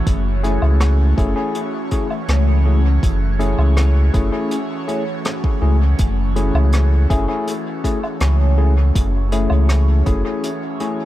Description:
ambient dub; 81 BPM; 4/4; straight; F# minor; A4 = 440 Hz
airy breathy pad; sustained chords; 0.0-11.1 s; E3 to C#5; -25 LUFS; right 1 dB; chorus, phaser
warm sub bass; bass; 0.1-10.2 s; F#1 to C#2; -15 LUFS; equal; tube saturation
electronic kick drum; drums; 0.1-10.2 s; -20 LUFS; equal
jazz brush drum kit; drums; 0.1-11.0 s; hi-hat, rim click, woodblock; -28 LUFS; equal; dub echo
tine electric piano; stabs; 0.4-11.1 s; A3 to G#4; -24 LUFS; left 3 dB; dub echo
small room ambience; -15 LUFS; side -14 dB against mid
0.0-11.1 A section
break 10.4-11.1
0.0 F#m7

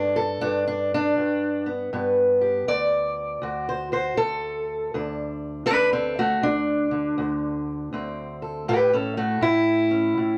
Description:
acoustic country blues, solo or duo; 80 BPM; 4/4; swing 64% on 8ths; D mixolydian; A4 = 441 Hz
fingerpicked steel-string acoustic guitar; solo; 0.0-10.4 s; D2 to D5; -24 LUFS; equal
moderate studio reverb, RT60 0.6 s; -24 LUFS; mono
0.0-10.4 A section
steel-string acoustic guitar solo 0.0-10.4
0.0 G; 2.7 D7; 8.7 A7

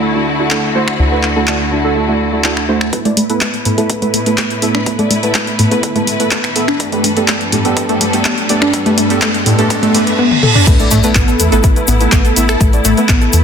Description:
progressive house; 124 BPM; 4/4; straight; A4 = 438 Hz
clear symphonic string section; sustained chords; 0.0-13.4 s; G2 to B4; -20 LUFS; left 2 dB; sidechain pumping, low-pass filter
deep mellow chord stab; stabs; 0.0-13.4 s; A3 to E5; -16 LUFS; right 2 dB; chorus, sidechain pumping, ping-pong delay
plucky analog bass; bass; 0.0-2.9, 10.7-13.4 s; A1 to E2; -16 LUFS; left 1 dB; sidechain pumping
deep house drum kit; drums; 0.5-13.4 s; crash cymbal, finger snaps, handclaps, hi-hat, toms; -17 LUFS; left 1 dB; soft clipping on snare, studio reverb
electronic kick drum; drums; 2.9-13.2 s; -14 LUFS; equal; high-pass filter on kick, studio reverb
riser, reverse cymbal and impact; sound effects; 5.3-12.6 s; -21 LUFS; equal
wide unison pluck; arpeggios; 3.1-13.3 s; A2 to A4; -16 LUFS; left 1 dB; sidechain pumping, ping-pong delay
egg shaker; percussion; 10.7-13.4 s; -22 LUFS; left 7 dB
moderate digital room reverb, RT60 1.1 s, digital ambience; dense, heavily limited modern master; -11 LUFS; side -7 dB against mid
0.0-2.9 A section; 2.9-10.7 B section; 10.7-13.4 C section
build-up 2.9-10.7; filter sweep on synth pluck 2.9-10.7; riser 5.3-10.2; reverse cymbal 9.7-10.7; drum fill 10.3-10.7; drop 10.7-13.4; impact 10.7-12.6
0.0 Dadd9; 2.9 Asus2; 6.8 Gadd9; 10.7 Asus2

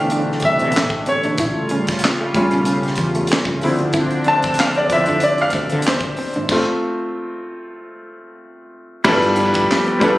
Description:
R&B, neo-soul; 94 BPM; 4/4; swing 55% on 16ths; A4 = 441 Hz
hollow-body jazz guitar; second line; 0.0-10.0 s; A3 to E4; -26 LUFS; right 2 dB
bright upright piano; accompaniment; 0.0-10.2 s; E3 to A5; -18 LUFS; equal
chorused pulse-width pad; sustained chords; 0.0-10.2 s; C#3 to B4; -23 LUFS; equal
woody fretless electric bass; bass; 0.0-10.1 s; G1 to D3; -25 LUFS; equal; wide subtle chorus
tight funk drum kit; drums; 0.1-10.2 s; crash cymbal, handclaps, hi-hat, kick drum, snare drum; -22 LUFS; equal
studio reverb; recorded on a phone in the room; -15 LUFS; side -17 dB against mid
0.0-9.0 A section; 9.0-10.2 B section
upright piano solo 0.0-9.0; stop 6.5-9.0
0.0 C69; 1.4 A7b13; 3.6 Dm9; 6.5 Am; 9.0 G13

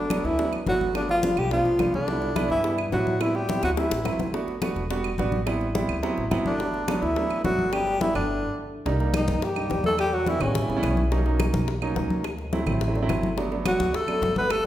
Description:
Afro-Cuban jazz; 212 BPM; 4/4; straight; G major; A4 = 440 Hz
breathy tenor saxophone; melody; 0.0-4.2, 6.5-11.0, 13.7-14.7 s; C#4 to B4; -25 LUFS; equal
growling trombone; second line; 0.0-4.2, 6.5-11.0, 13.7-14.6 s; C#3 to B3; -33 LUFS; left 3 dB
warm grand piano; accompaniment; 0.0-14.5 s; F3 to F#4; -28 LUFS; right 3 dB
upright bass; bass; 0.0-14.7 s; E1 to B2; -30 LUFS; equal
bongos; percussion; 0.1-14.6 s; -35 LUFS; left 5 dB
claves; percussion; 0.1-14.6 s; -39 LUFS; right 6 dB
congas; percussion; 0.1-14.6 s; -31 LUFS; left 2 dB
wet recital hall reverb, RT60 1.7 s; recorded in a church or concert hall; -22 LUFS; side -12 dB against mid
0.0-8.9 A section; 8.9-14.7 B section
drum fill 3.6-4.3; stop 8.3-8.9
0.0 Gmaj9; 1.0 G9; 2.1 Cmaj9; 3.2 Am7; 3.8 D9; 4.3 Em9; 5.5 Am7; 6.0 D13; 6.6 Gmaj9; 8.3 G5; 8.9 Cm9; 10.0 Em7; 10.6 A9; 11.1 Bmaj9; 12.2 D7; 13.4 Gmaj7

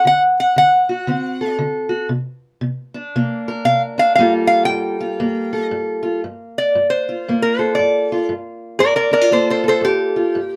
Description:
acoustic country blues, solo or duo; 116 BPM; 4/4; swing 61% on 8ths; G minor; A4 = 435 Hz
lap resonator guitar; melody; 0.0-10.6 s; G4 to G5; -17 LUFS; equal
fingerpicked steel-string acoustic guitar; accompaniment; 0.0-10.6 s; G2 to Bb4; -23 LUFS; equal
light reverb; close, detailed microphones; -18 LUFS; mono
0.0-6.2 A section; 6.2-10.6 B section
resonator guitar played with a steel bar solo 0.0-6.2
0.0 D7; 2.1 Csus2; 4.2 Gm9

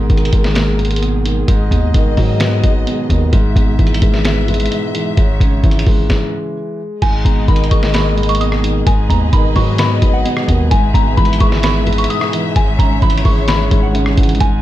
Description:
hip hop, trap; 130 BPM; 4/4; half-time; G# minor; A4 = 442 Hz
dark baby grand piano; accompaniment; 0.0-14.6 s; G#2 to C#4; -18 LUFS; equal; low-pass filter
dark symphonic string section; sustained chords; 0.0-14.6 s; G#3 to E5; -24 LUFS; left 2 dB
long sustained 808-style bass; bass; 0.0-14.6 s; G#1 to G#2; -16 LUFS; equal
lo-fi sampler-style drum kit; drums; 0.1-14.5 s; crash cymbal, hi-hat, kick drum, rim click, snare drum; -15 LUFS; equal
soft synth bell; melody; 7.0-14.6 s; F#5 to D#6; -21 LUFS; equal; chorus, phaser, low-pass filter, ping-pong delay
little or no reverb; -11 LUFS; side -14 dB against mid
0.0-7.0 A section; 7.0-14.6 B section
stop 6.1-7.0
0.0 G#madd9; 1.5 B/G#; 3.3 E/G#; 5.2 C#m/G#; 7.0 G#madd9; 8.9 B/G#; 10.7 E/G#; 12.6 C#m/G#

